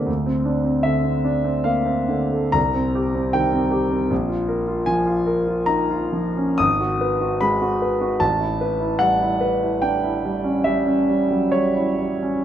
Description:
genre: classical, impressionist solo piano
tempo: 59-81 BPM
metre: 5/4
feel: rubato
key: unclear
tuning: A4 = 438 Hz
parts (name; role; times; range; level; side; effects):
- clear concert grand piano; solo; 0.0-12.4 s; Ab1 to Eb6; -18 LUFS; equal; none
room: moderate recital hall reverb, RT60 1.8 s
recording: close, detailed microphones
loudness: -18 LUFS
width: side -10 dB against mid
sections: 0.0-12.4 A section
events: none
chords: 0.1 Dm7; 2.6 Cm7; 4.1 Bb7(no3); 6.6 Abm7; 8.2 A9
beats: | 0.08 0.84 1.66 2.56 3.35 | 4.11 4.88 5.68 6.60 7.41 | 8.21 9.00 9.81 10.64 11.51

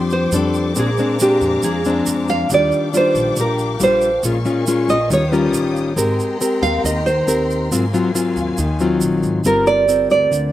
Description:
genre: bossa nova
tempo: 138 BPM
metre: 4/4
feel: straight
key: unclear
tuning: A4 = 437 Hz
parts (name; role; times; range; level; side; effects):
- nylon-string guitar; accompaniment; 0.0-10.5 s; Ab2 to Bb4; -18 LUFS; left 2 dB; slapback echo
- warm symphonic string section; sustained chords; 0.0-9.4 s; D4 to Eb6; -28 LUFS; left 3 dB; none
- upright bass; bass; 0.0-10.5 s; G1 to F2; -25 LUFS; equal; none
- nylon-string guitar; melody; 0.1-10.5 s; G4 to F5; -17 LUFS; right 2 dB; slapback echo
- tube shaker; percussion; 0.1-10.5 s; none; -28 LUFS; right 6 dB; none
- hollow small flute group; second line; 9.5-10.5 s; Bb4 to D5; -26 LUFS; right 1 dB; slapback echo
room: little or no reverb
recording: recorded outdoors, with no room sound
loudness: -15 LUFS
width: side -13 dB against mid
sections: 0.0-9.4 A section; 9.4-10.5 B section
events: nylon-string guitar solo 0.0-9.4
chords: 0.0 Bb69 (rootless); 0.8 Bb9; 2.5 Ebmaj9; 4.2 Bbm7; 5.1 Eb9; 6.0 Abmaj9; 7.7 Ab13; 9.4 Gm7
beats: 0.33 | 0.76 1.20 1.63 2.06 | 2.50 2.93 3.37 3.80 | 4.24 4.67 5.10 5.54 | 5.97 6.41 6.84 7.28 | 7.71 8.14 8.58 9.02 | 9.45 9.88 10.32

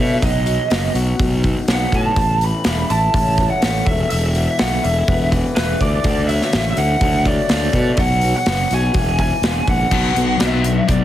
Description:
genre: quiet-loud alternative rock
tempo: 124 BPM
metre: 4/4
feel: straight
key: unclear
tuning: A4 = 441 Hz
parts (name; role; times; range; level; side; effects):
- lead guitar through a small cranked amp; melody; 0.0-11.0 s; B4 to B5; -21 LUFS; right 1 dB; overdrive, slapback echo
- picked steel-string acoustic guitar; arpeggios; 0.0-11.0 s; E2 to F#4; -25 LUFS; left 4 dB; none
- fuzz fingered electric bass; bass; 0.0-11.0 s; E1 to B2; -19 LUFS; equal; overdrive
- big rock drum kit; drums; 0.2-11.0 s; crash cymbal, hi-hat, kick drum, snare drum; -20 LUFS; equal; none
- distorted electric guitar; riff; 9.9-11.0 s; B2 to B3; -20 LUFS; left 7 dB; distortion
room: small room ambience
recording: heavily compressed radio sound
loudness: -15 LUFS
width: side -12 dB against mid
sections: 0.0-9.9 A section; 9.9-11.0 B section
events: none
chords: 0.2 B; 2.2 A; 3.9 Esus4; 6.1 Dadd9; 8.0 B5; 9.0 E; 9.9 Bm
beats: | 0.23 0.72 1.20 1.69 | 2.17 2.66 3.14 3.63 | 4.12 4.60 5.08 5.57 | 6.05 6.54 7.03 7.51 | 7.99 8.48 8.96 9.45 | 9.93 10.42 10.90

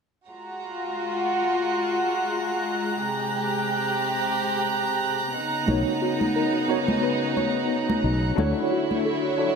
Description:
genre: sunset chillout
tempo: 89 BPM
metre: 4/4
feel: swing 56% on 16ths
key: F# major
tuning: A4 = 440 Hz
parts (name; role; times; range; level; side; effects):
- dark studio string section; sustained chords; 0.3-9.6 s; B#2 to A#5; -25 LUFS; equal; vintage 12-bit sampler grit
- drifting glass-harmonics texture; texture; 0.8-9.6 s; F#6; -33 LUFS; right 2 dB; chorus, built-in reverb
- tine electric piano; accompaniment; 5.7-9.6 s; B3 to C#5; -26 LUFS; moving between left 4 dB and right 4 dB; overdrive, medium stereo tremolo, auto-pan, ping-pong delay
- soft round pluck; arpeggios; 5.7-9.4 s; D#4 to C#5; -30 LUFS; left 2 dB; chorus, ping-pong delay
- mellow fretless electric bass; bass; 5.7-8.5 s; B1 to D2; -25 LUFS; left 1 dB; none
- congas; percussion; 5.7-9.0 s; none; -30 LUFS; right 1 dB; none
room: wet plate reverb, RT60 2.7 s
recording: dreamy mix soaked in reverb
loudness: -22 LUFS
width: side -5 dB against mid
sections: 0.3-9.6 A section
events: none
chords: 0.3 F#maj9; 3.0 G#maj9; 5.3 Bmaj9; 8.4 Dmaj9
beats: | 0.29 0.96 1.64 2.31 | 2.99 3.66 4.33 5.01 | 5.68 6.36 7.03 7.71 | 8.38 9.05

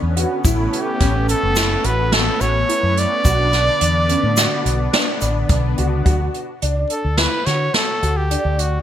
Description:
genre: progressive instrumental, band music in an uneven meter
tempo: 107 BPM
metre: 5/4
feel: straight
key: D major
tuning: A4 = 440 Hz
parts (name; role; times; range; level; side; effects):
- analog string pad; accompaniment; 0.0-6.0 s; D3 to D4; -25 LUFS; left 2 dB; ensemble chorus
- mellow fretless electric bass; bass; 0.0-8.8 s; F#1 to D3; -20 LUFS; equal; lush chorus
- warm grand piano; arpeggios; 0.2-8.7 s; C#4 to F#4; -25 LUFS; right 1 dB; ensemble chorus
- jazz brush drum kit; drums; 0.2-8.7 s; hi-hat, kick drum, snare drum; -20 LUFS; equal; gated reverb
- tube shaker; percussion; 0.4-5.5 s; none; -29 LUFS; left 6 dB; none
- warm trumpet; melody; 0.7-8.8 s; F#4 to D5; -20 LUFS; equal; digital delay
room: light reverb, studio reverb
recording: bright 1980s-style digital production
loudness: -15 LUFS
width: side -10 dB against mid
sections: 0.0-6.1 A section; 6.1-8.8 B section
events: none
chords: 0.4 Aadd9; 3.2 Bmadd9; 6.1 D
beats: | 0.44 1.00 1.56 2.12 2.69 | 3.25 3.81 4.37 4.93 5.49 | 6.06 6.62 7.18 7.74 8.31

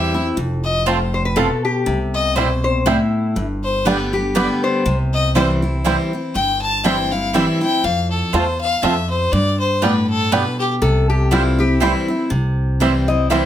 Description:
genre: bluegrass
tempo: 121 BPM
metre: 3/4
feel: swing 55% on 8ths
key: C major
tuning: A4 = 440 Hz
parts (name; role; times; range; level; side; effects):
- bluegrass banjo; melody; 0.0-13.4 s; G3 to G4; -23 LUFS; right 2 dB; none
- clear fiddle; melody; 0.0-10.7 s; G4 to A5; -20 LUFS; left 3 dB; none
- picked steel-string acoustic guitar; accompaniment; 0.0-13.5 s; E2 to G4; -20 LUFS; left 1 dB; none
- upright bass; bass; 0.0-13.4 s; F1 to G2; -21 LUFS; equal; none
- mandolin; stabs; 0.9-13.4 s; B3 to A5; -22 LUFS; right 6 dB; none
- lap resonator guitar; second line; 1.1-5.0, 10.8-13.5 s; E4 to E5; -21 LUFS; left 4 dB; none
room: moderate studio reverb, RT60 0.6 s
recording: none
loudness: -15 LUFS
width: side -11 dB against mid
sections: 0.4-12.3 A section; 12.3-13.5 B section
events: resonator guitar played with a steel bar solo 12.3-13.5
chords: 0.4 F; 1.9 C; 3.4 G; 4.9 C; 7.8 F; 9.3 G; 10.8 C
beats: | 0.37 0.87 1.37 | 1.87 2.37 2.86 | 3.36 3.86 4.36 | 4.85 5.35 5.85 | 6.35 6.84 7.34 | 7.84 8.33 8.83 | 9.33 9.82 10.32 | 10.82 11.32 11.81 | 12.31 12.81 13.31

